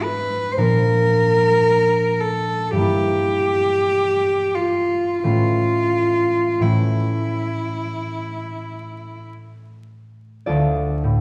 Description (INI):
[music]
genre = classical, romantic duo for cello and harp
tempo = 43-56 BPM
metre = 4/4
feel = rubato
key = unclear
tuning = A4 = 440 Hz
[part]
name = warm cello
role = melody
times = 0.0-9.2 s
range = E4 to C5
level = -21 LUFS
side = equal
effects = none
[part]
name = concert harp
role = accompaniment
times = 0.0-11.2 s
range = D2 to D5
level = -24 LUFS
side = equal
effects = none
[sound]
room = wet recital hall reverb, RT60 1.5 s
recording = heard from further back in the room, vinyl crackle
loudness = -19 LUFS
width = mono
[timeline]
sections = 0.0-10.5 A section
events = none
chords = 0.0 E7/G#; 0.6 Bb; 2.8 Edim/G; 5.2 A; 10.5 Dm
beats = | 0.59 1.67 2.75 3.91 | 5.23 6.61 7.95 9.23 | 10.48